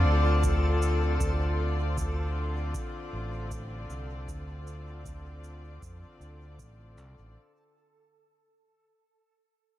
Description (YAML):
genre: ambient dub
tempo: 78 BPM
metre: 4/4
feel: swing 57% on 16ths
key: D minor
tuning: A4 = 440 Hz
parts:
  - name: rich chamber string section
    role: sustained chords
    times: 0.0-7.4 s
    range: D3 to D5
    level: -34 LUFS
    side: left 3 dB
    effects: none
  - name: overdriven fingered electric bass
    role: bass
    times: 0.0-7.3 s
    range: A1 to F2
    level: -29 LUFS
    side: equal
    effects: none
  - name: backwards swelling texture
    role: texture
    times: 0.0-7.4 s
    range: A4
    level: -39 LUFS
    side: right 2 dB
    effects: built-in reverb
  - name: cabasa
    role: drums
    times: 0.4-7.2 s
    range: none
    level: -45 LUFS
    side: right 6 dB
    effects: overdrive
  - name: electronic kick drum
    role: drums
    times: 0.4-6.8 s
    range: none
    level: -35 LUFS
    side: equal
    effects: none
room: little or no reverb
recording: echo-heavy mix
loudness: -27 LUFS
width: side -14 dB against mid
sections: 0.0-7.4 A section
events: fade-out 0.0-7.4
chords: 0.0 Dm7